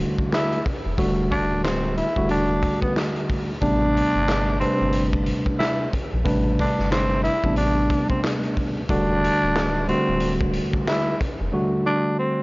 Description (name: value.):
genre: hip hop, boom-bap hip-hop.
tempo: 91 BPM.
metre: 4/4.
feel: swing 59% on 16ths.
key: A minor.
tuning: A4 = 440 Hz.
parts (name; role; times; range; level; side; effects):
mellow tine electric piano; accompaniment; 0.0-12.4 s; C3 to B4; -23 LUFS; equal; cassette tape, high-pass filter, low-pass filter.
soft dub sub bass; bass; 0.0-11.5 s; D1 to Bb1; -26 LUFS; equal; tube saturation.
raw garage drum kit; drums; 0.2-11.4 s; handclaps, hi-hat, kick drum, snare drum; -26 LUFS; equal; none.
growling tenor saxophone; melody; 0.3-12.4 s; B3 to E4; -24 LUFS; equal; high-pass filter, low-pass filter, analog delay.
room: little or no reverb.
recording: dry, gritty hardware recording, cassette tape, nothing above 7.5 kHz.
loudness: -19 LUFS.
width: side -25 dB against mid.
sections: 0.0-12.4 A section.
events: none.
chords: 0.0 Em11; 3.6 Am11; 8.9 Em11 (rootless).